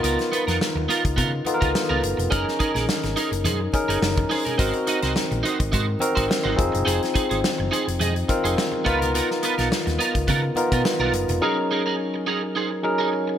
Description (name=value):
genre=polished 1980s jazz-funk pop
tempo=106 BPM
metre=4/4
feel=swing 54% on 16ths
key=unclear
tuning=A4 = 440 Hz
part: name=barky tine electric piano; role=accompaniment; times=0.0-13.4 s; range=Gb3 to Bb4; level=-24 LUFS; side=left 1 dB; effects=lush chorus
part: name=electric guitar at the edge of break-up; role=riff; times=0.0-13.3 s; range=Cb4 to Eb5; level=-26 LUFS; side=right 4 dB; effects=analog chorus
part: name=hollow-body short-scale fingered electric bass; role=bass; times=0.0-11.4 s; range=F1 to Db3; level=-26 LUFS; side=equal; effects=none
part: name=modern studio drum kit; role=drums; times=0.0-11.4 s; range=hi-hat, kick drum, snare drum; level=-26 LUFS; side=equal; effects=gated reverb
part: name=congas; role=percussion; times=0.1-11.4 s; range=none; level=-39 LUFS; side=left 2 dB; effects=none
room=moderate plate reverb, RT60 3.1 s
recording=bright 1980s-style digital production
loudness=-20 LUFS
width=side -10 dB against mid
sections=0.0-13.4 A section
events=none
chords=0.0 Db13; 2.3 Gb69; 4.6 Ab7; 6.6 Fm7; 8.9 Db13; 11.4 Gb69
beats=| 0.04 0.61 1.18 1.75 | 2.32 2.88 3.45 4.02 | 4.59 5.16 5.73 6.30 | 6.87 7.44 8.01 8.57 | 9.14 9.71 10.28 10.85 | 11.42 11.99 12.55 13.12